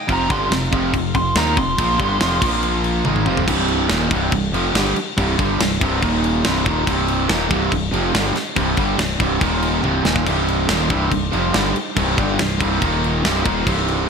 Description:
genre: heavy metal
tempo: 142 BPM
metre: 4/4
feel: straight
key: C minor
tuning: A4 = 440 Hz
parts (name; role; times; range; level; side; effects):
- lead guitar through a small cranked amp; melody; 0.0-2.8 s; G5 to C6; -23 LUFS; equal; overdrive, digital delay
- pipe organ, full organ; sustained chords; 0.0-3.5, 10.2-14.1 s; Eb3 to F5; -31 LUFS; right 1 dB; none
- distorted electric guitar; riff; 0.1-14.1 s; C2 to Eb4; -22 LUFS; right 2 dB; distortion
- distorted electric guitar; riff; 0.1-14.1 s; C2 to Eb4; -23 LUFS; left 1 dB; distortion
- growling picked electric bass; bass; 0.1-14.1 s; C1 to Eb2; -24 LUFS; equal; overdrive
- tight metal drum kit; drums; 0.1-14.0 s; crash cymbal, kick drum, snare drum, toms; -22 LUFS; equal; gated reverb
room: light reverb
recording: bright 1980s-style digital production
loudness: -16 LUFS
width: side -6 dB against mid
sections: 0.0-3.5 A section; 3.5-14.1 B section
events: lead electric guitar solo 0.0-3.5; drum fill 3.1-3.5, 9.8-10.3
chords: 0.1 F5; 2.4 Bb5; 3.1 F5; 3.5 Cm; 6.0 Eb5; 6.4 Cm; 9.4 Eb5; 9.8 Cm; 12.8 Eb5; 13.2 Cm

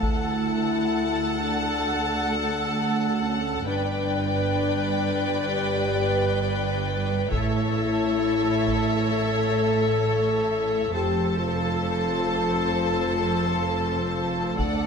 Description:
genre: cinematic, epic orchestral film score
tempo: 66 BPM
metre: 4/4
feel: straight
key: unclear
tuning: A4 = 440 Hz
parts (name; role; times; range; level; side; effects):
- warm symphonic violin section; melody; 0.0-14.9 s; E5 to A5; -32 LUFS; left 6 dB; none
- rich symphonic violin section; second line; 0.0-14.9 s; C5 to F#5; -32 LUFS; left 3 dB; none
- rich symphonic viola section; accompaniment; 0.0-14.9 s; A4 to B4; -29 LUFS; right 2 dB; none
- mellow French horn section; sustained chords; 0.0-14.9 s; C#4 to A4; -28 LUFS; left 6 dB; none
- rich symphonic cello section; bass; 0.0-14.9 s; D2 to A2; -29 LUFS; right 3 dB; none
- rich symphonic double bass section; bass; 0.0-14.9 s; F1 to D2; -30 LUFS; right 5 dB; none
- taiko ensemble; drums; 0.0-1.8, 7.3-9.1, 14.6-14.9 s; none; -29 LUFS; left 1 dB; none
room: moderate scoring stage reverb, RT60 2.1 s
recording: none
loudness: -22 LUFS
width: side -6 dB against mid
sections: 0.0-14.9 A section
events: none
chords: 0.0 D; 3.7 G; 7.3 A; 11.0 F

